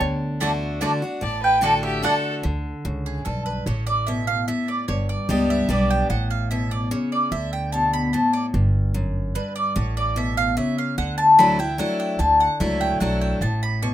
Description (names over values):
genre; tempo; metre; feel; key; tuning
bluegrass; 148 BPM; 3/4; straight; D major; A4 = 439 Hz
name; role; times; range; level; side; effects
picked steel-string acoustic guitar; accompaniment; 0.0-13.9 s; F#2 to G4; -25 LUFS; left 1 dB; none
upright bass; bass; 0.0-13.9 s; G1 to D2; -25 LUFS; right 1 dB; none
mandolin; stabs; 0.4-13.9 s; A3 to C#6; -22 LUFS; equal; none
mandolin; melody; 1.2-2.3 s; E5 to A5; -22 LUFS; right 2 dB; none
clear fiddle; second line; 1.2-2.3 s; G4 to D5; -29 LUFS; left 3 dB; none
room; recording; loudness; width
light reverb; minimal, uncompressed stereo recording; -19 LUFS; side -12 dB against mid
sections
0.0-2.4 A section; 2.4-12.2 B section; 12.2-13.9 B section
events
mandolin solo 2.4-13.9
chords
0.0 D; 2.4 Bm13; 3.7 Aadd11; 4.9 G; 6.1 A; 7.3 D5; 8.5 Gmaj7; 9.8 A; 11.0 Dadd9; 13.4 A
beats
| 0.01 0.42 0.82 | 1.23 1.64 2.04 | 2.45 2.85 3.26 | 3.67 4.07 4.48 | 4.88 5.29 5.70 | 6.10 6.51 6.92 | 7.32 7.73 8.14 | 8.54 8.95 9.36 | 9.76 10.17 10.57 | 10.98 11.39 11.79 | 12.20 12.61 13.01 | 13.42 13.83